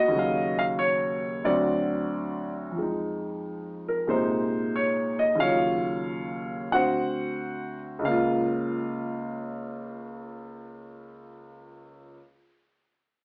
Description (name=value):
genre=solo jazz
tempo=91 BPM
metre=4/4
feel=swing 67% on 8ths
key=Db major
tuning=A4 = 440 Hz
part: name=warm baby grand piano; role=solo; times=0.0-12.2 s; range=Db2 to F#5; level=-28 LUFS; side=equal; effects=none
room=wet studio reverb, RT60 0.8 s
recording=AM radio sound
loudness=-27 LUFS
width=mono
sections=0.0-8.0 A section; 8.0-10.7 B section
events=none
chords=0.1 Ebm9; 1.4 D7; 2.8 Fm7; 4.1 Bb9sus4; 5.4 Ebm9; 6.7 D7; 8.0 Db6